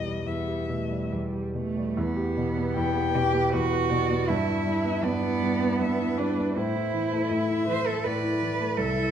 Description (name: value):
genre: classical, slow romantic movement for piano trio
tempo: 79 BPM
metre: 3/4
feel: uneven beats, rubato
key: E minor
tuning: A4 = 439 Hz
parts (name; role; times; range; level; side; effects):
- dark violin; melody; 0.0-9.1 s; B4 to G5; -33 LUFS; left 8 dB; none
- rich cello; second line; 0.0-9.1 s; G3 to C5; -28 LUFS; right 5 dB; none
- clear concert grand piano; accompaniment; 0.0-9.1 s; C2 to G4; -27 LUFS; left 1 dB; none
room: wet recital hall reverb, RT60 1.6 s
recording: none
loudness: -24 LUFS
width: side -9 dB against mid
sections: 0.0-2.0 A section; 2.0-9.1 B section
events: none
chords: 0.0 Em; 4.3 Em/G; 6.6 Am